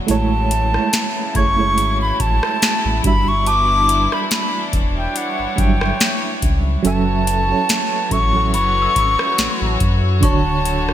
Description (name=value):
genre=contemporary R&B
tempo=71 BPM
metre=4/4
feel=swing 54% on 16ths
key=A major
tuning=A4 = 440 Hz
part: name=FM electric piano with tremolo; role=accompaniment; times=0.0-10.9 s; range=D3 to F#5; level=-23 LUFS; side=right 5 dB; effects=none
part: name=warm studio string section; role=sustained chords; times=0.0-10.9 s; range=C#3 to C#5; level=-25 LUFS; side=left 3 dB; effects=sidechain pumping
part: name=reedy concert flute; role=melody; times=0.1-10.9 s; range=F#5 to D6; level=-19 LUFS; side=equal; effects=ping-pong delay
part: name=sub bass with octave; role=bass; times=0.1-10.9 s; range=D1 to F#2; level=-20 LUFS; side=equal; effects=none
part: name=booming analog drum machine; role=drums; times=0.1-10.9 s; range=hi-hat, kick drum, rim click, snare drum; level=-19 LUFS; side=left 1 dB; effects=gated reverb
part: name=synth chime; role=texture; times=1.4-10.9 s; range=A5 to G#6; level=-31 LUFS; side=left 1 dB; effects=ensemble chorus, ping-pong delay
room=light reverb, digital ambience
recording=bright 1980s-style digital production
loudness=-15 LUFS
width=side -11 dB against mid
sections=0.0-10.9 A section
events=none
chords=0.1 Amaj7; 3.0 Em7; 6.8 F#m7; 10.2 Dmaj7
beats=| 0.09 0.93 1.78 2.62 | 3.47 4.31 5.16 6.00 | 6.85 7.69 8.54 9.38 | 10.23